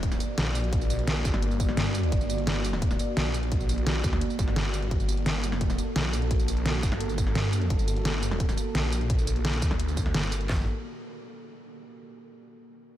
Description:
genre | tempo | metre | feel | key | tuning
dark technical drum and bass | 172 BPM | 4/4 | straight | G harmonic minor | A4 = 444 Hz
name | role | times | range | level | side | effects
deep dark ambient pad | sustained chords | 0.0-10.7 s | Bb3 to D5 | -34 LUFS | equal | chorus, built-in reverb, sidechain pumping
snarling distorted saw bass | bass | 0.0-10.7 s | G1 to G2 | -29 LUFS | equal | distortion
dubstep drum kit | drums | 0.0-10.6 s | handclaps, kick drum, snare drum | -28 LUFS | equal | none
dubstep drum kit | drums | 0.0-10.5 s | hi-hat, snare drum, tambourine | -30 LUFS | equal | none
room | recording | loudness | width
light reverb, digital ambience | none | -24 LUFS | side -13 dB against mid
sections
0.0-10.5 A section; 10.5-11.9 B section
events
drop 0.0-10.5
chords
0.0 Gm

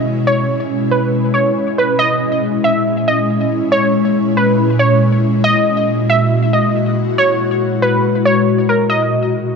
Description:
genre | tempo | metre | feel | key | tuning
hip hop | 139 BPM | 4/4 | half-time | unclear | A4 = 440 Hz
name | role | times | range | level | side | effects
warbly dusty pluck | melody | 0.0-9.5 s | A#4 to E5 | -16 LUFS | right 1 dB | chorus, ping-pong delay
ethereal airy pad | sustained chords | 0.0-9.6 s | A#2 to F#4 | -15 LUFS | left 1 dB | ensemble chorus, built-in reverb
room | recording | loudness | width
moderate lush hall reverb, RT60 2.6 s | dark, warm production | -12 LUFS | side -5 dB against mid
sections
0.0-8.9 A section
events
none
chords
0.0 C#m7; 2.0 A#m7b5; 5.4 F#9; 8.9 G#m7

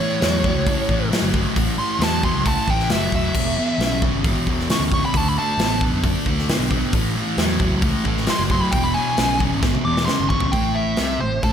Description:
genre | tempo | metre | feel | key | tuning
blues rock power trio and southern rock | 134 BPM | 4/4 | straight | A mixolydian | A4 = 440 Hz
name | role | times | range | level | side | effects
nasal lead guitar with a parked wah | melody | 0.0-11.5 s | A4 to D6 | -24 LUFS | right 1 dB | overdrive
sludgy distorted guitar | riff | 0.0-11.5 s | E2 to B3 | -22 LUFS | equal | overdrive
overdriven fingered electric bass | bass | 0.2-11.5 s | E1 to F#2 | -25 LUFS | equal | none
big rock drum kit | drums | 0.2-11.5 s | crash cymbal, hi-hat, kick drum, snare drum, toms | -22 LUFS | equal | none
room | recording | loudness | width
moderate recital hall reverb, RT60 1.4 s, studio reverb | big arena sound | -17 LUFS | side -8 dB against mid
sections
0.0-10.5 A section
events
lead electric guitar solo 0.0-10.5; drum fill 9.6-10.5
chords
0.0 A; 3.4 E7; 5.1 D; 6.9 A; 8.7 E; 10.5 Am7

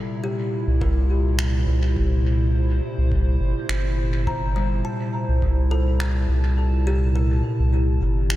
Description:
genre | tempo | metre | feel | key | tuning
ambient dub | 104 BPM | 4/4 | swing 54% on 16ths | C mixolydian | A4 = 440 Hz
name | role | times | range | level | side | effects
warbly tape-like pad | sustained chords | 0.0-8.4 s | Bb2 to A5 | -26 LUFS | equal | chorus, built-in reverb, phaser
kalimba | arpeggios | 0.0-8.4 s | G3 to Bb5 | -32 LUFS | left 3 dB | diffuse ambient delay
round analog bass | bass | 0.7-8.4 s | G1 to C2 | -20 LUFS | equal | none
electronic kick drum | drums | 0.8-5.5 s | none | -28 LUFS | equal | overdrive
finger snaps | drums | 1.4-8.4 s | none | -33 LUFS | equal | dub echo
room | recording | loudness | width
light reverb, small room ambience | none | -19 LUFS | side -15 dB against mid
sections
0.0-8.4 A section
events
kick drops out 6.6-8.4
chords
0.0 C7(no3)

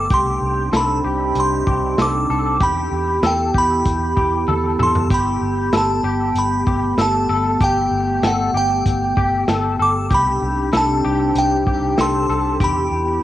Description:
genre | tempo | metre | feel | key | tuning
dream pop | 96 BPM | 4/4 | straight | G major | A4 = 439 Hz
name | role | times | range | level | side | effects
glassy synth bell | melody | 0.0-13.2 s | F#5 to D6 | -20 LUFS | right 1 dB | chorus, cassette tape, analog delay
warbly tape-like pad | sustained chords | 0.0-13.2 s | C3 to G4 | -22 LUFS | equal | chorus, built-in reverb, cassette tape
clean electric guitar | arpeggios | 0.0-13.2 s | G4 to A4 | -24 LUFS | left 4 dB | ensemble chorus, cassette tape, analog delay, plate reverb
vintage muted fingered electric bass | bass | 0.0-13.2 s | G1 to E2 | -24 LUFS | equal | tube saturation
vintage drum kit | drums | 0.1-12.7 s | hi-hat, kick drum, snare drum, toms | -21 LUFS | equal | cassette tape
room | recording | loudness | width
moderate booth ambience, RT60 0.2 s | home recording on cassette | -16 LUFS | side -13 dB against mid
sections
0.0-13.2 A section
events
drum fill 4.5-5.1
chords
0.1 Cmadd9; 2.6 Em; 5.1 Gadd9; 10.1 Cmadd9; 12.6 Em

